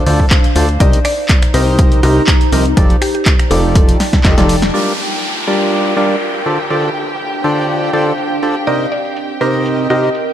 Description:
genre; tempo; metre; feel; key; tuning
piano house; 122 BPM; 4/4; swing 53% on 16ths; G minor; A4 = 440 Hz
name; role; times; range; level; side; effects
percussive organ stab; riff; 0.0-10.1 s; C3 to Eb5; -16 LUFS; equal; chorus, sidechain pumping, dub echo
plucky analog bass; bass; 0.0-4.7 s; F1 to D2; -14 LUFS; equal; sidechain pumping
warbly tape-like pad; texture; 0.0-10.3 s; C4 to Bb5; -21 LUFS; equal; chorus, built-in reverb, phaser, sidechain pumping
punchy analog drum machine; drums; 0.1-10.3 s; crash cymbal, finger snaps, handclaps, hi-hat, snare drum; -19 LUFS; equal; low-pass filter on hats, low-pass filter on snare, low-pass filter on cymbals
electronic kick drum; drums; 0.2-4.4 s; none; -11 LUFS; equal; none
mallet-like synth pluck; melody; 0.8-3.9, 8.7-10.1 s; G4 to D5; -21 LUFS; equal; chorus, dub echo
muted chamber violin section; sustained chords; 4.7-10.3 s; G4 to G5; -24 LUFS; right 1 dB; sidechain pumping
downlifter; sound effects; 4.7-8.7 s; none; -23 LUFS; equal; none
room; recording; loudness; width
moderate lush hall reverb, RT60 1.8 s; lossy compression artefacts; -11 LUFS; side -11 dB against mid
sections
0.0-4.7 A section; 4.7-10.3 B section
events
drum fill 4.0-4.7; band accent 4.6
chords
0.0 Dm7; 0.8 Cm7; 2.8 F13; 4.7 Gm7; 6.5 Dm7; 8.7 Cm7

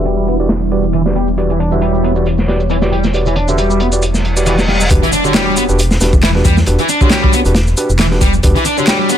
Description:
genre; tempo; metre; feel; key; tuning
breakbeat, breaks; 136 BPM; 4/4; swing 55% on 16ths; E dorian; A4 = 440 Hz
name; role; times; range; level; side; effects
phased analog pad; sustained chords; 0.0-4.9 s; E3 to C#5; -20 LUFS; right 2 dB; phaser, chorus, sidechain pumping
fuzz guitar; riff; 0.0-9.2 s; D3 to D4; -17 LUFS; equal; distortion, low-pass filter, dub echo
overdriven tine electric piano; stabs; 0.0-9.2 s; D4 to E5; -19 LUFS; right 1 dB; vintage 12-bit sampler grit, low-pass filter, dub echo
dark detuned saw bass; bass; 0.0-8.5 s; E1 to E2; -15 LUFS; equal; none
electronic shaker and handclaps; drums; 0.0-9.2 s; none; -22 LUFS; equal; overdrive
crunchy breakbeat drum kit; drums; 0.1-9.2 s; hi-hat, kick drum, snare drum; -15 LUFS; equal; low-pass filter on kick, low-pass filter on hats, low-pass filter on snare, low-pass filter on room
reverse cymbal and impact; sound effects; 4.2-6.7 s; none; -21 LUFS; left 1 dB; none
room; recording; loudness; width
small room ambience; low-pass filter; -10 LUFS; side -10 dB against mid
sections
0.0-4.9 A section; 4.9-9.2 B section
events
filter sweep on analog synth pad 0.0-4.9; filter sweep 0.0-4.9; reverse cymbal 4.2-4.9; drop 4.9-9.2; impact 4.9-6.7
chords
0.0 Em7

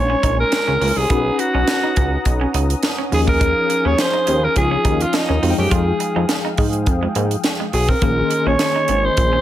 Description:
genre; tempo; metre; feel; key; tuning
early-eighties boogie funk; 104 BPM; 4/4; straight; Bb dorian; A4 = 440 Hz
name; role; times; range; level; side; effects
growling alto saxophone; melody; 0.0-9.4 s; Eb4 to Db5; -19 LUFS; equal; slapback echo
tine electric piano; accompaniment; 0.0-9.4 s; Eb3 to G5; -24 LUFS; left 4 dB; overdrive, medium stereo tremolo
brassy analog pad; sustained chords; 0.0-9.4 s; Db4 to Eb6; -30 LUFS; equal; chorus
chorused synth bass; bass; 0.0-9.4 s; Ab1 to Ab2; -19 LUFS; equal; none
electric guitar at the edge of break-up; riff; 0.1-9.4 s; Ab3 to F4; -28 LUFS; right 5 dB; wide subtle chorus
tight funk drum kit; drums; 0.2-9.3 s; hi-hat, kick drum, snare drum; -21 LUFS; equal; gated reverb
room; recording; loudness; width
light reverb, small room ambience; none; -15 LUFS; side -12 dB against mid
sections
0.0-9.4 A section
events
none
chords
0.0 Bbm11; 1.1 Bmaj9; 3.1 Eb9sus4; 5.4 Fm9; 8.0 Bbm11

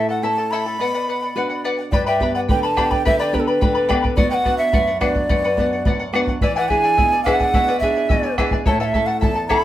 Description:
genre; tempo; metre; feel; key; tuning
andean folk, Andean ensemble; 107 BPM; 2/4; straight; unclear; A4 = 440 Hz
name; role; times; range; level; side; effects
breathy large quena; melody; 0.0-9.6 s; A4 to B5; -20 LUFS; right 1 dB; none
charango; accompaniment; 0.0-9.6 s; E4 to B5; -23 LUFS; left 3 dB; none
nylon-string guitar; accompaniment; 0.0-9.6 s; E2 to B4; -24 LUFS; right 1 dB; none
bombo; percussion; 1.9-9.6 s; none; -21 LUFS; equal; none
room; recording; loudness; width
moderate studio reverb, RT60 0.6 s; band playing live in one room; -16 LUFS; side -13 dB against mid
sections
0.0-1.9 A section; 1.9-9.6 A section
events
none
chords
0.0 A; 0.8 Bm; 1.9 G; 4.2 Bm; 6.4 E7; 8.7 A

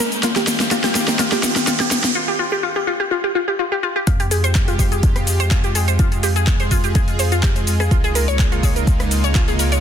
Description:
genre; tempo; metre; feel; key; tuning
progressive house; 125 BPM; 4/4; straight; F minor; A4 = 441 Hz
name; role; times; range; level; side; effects
supersaw pad; sustained chords; 0.0-9.8 s; Db3 to Ab4; -25 LUFS; right 1 dB; sidechain pumping
glassy wavetable pluck; arpeggios; 0.0-9.8 s; F4 to Db5; -22 LUFS; left 1 dB; chorus, sidechain pumping, ping-pong delay
round analog bass; bass; 0.0-9.8 s; Bb1 to F2; -20 LUFS; equal; sidechain pumping, high-pass filter
big-room dance drum kit; drums; 0.0-9.8 s; handclaps, hi-hat, rim click, shaker, snare drum; -21 LUFS; left 1 dB; overdrive, studio reverb, sidechain pumping on hats, sidechain pumping on perc
riser; sound effects; 0.0-2.2 s; none; -25 LUFS; right 3 dB; none
twinkling granular texture; texture; 0.1-2.2 s; G6; -36 LUFS; right 2 dB; none
electronic kick drum; drums; 4.1-9.5 s; none; -17 LUFS; equal; overdrive, studio reverb
room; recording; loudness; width
light reverb, digital ambience; dense, heavily limited modern master; -15 LUFS; side -8 dB against mid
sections
0.0-4.1 A section; 4.1-9.8 B section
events
build-up 0.0-4.1; drum fill 0.0-2.2; riser 0.0-2.2; filter sweep on synth arpeggio sound 0.0-4.1; break 2.2-4.1; drop 4.1-9.8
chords
0.2 Eb6; 4.1 Fmadd9; 7.9 Db6

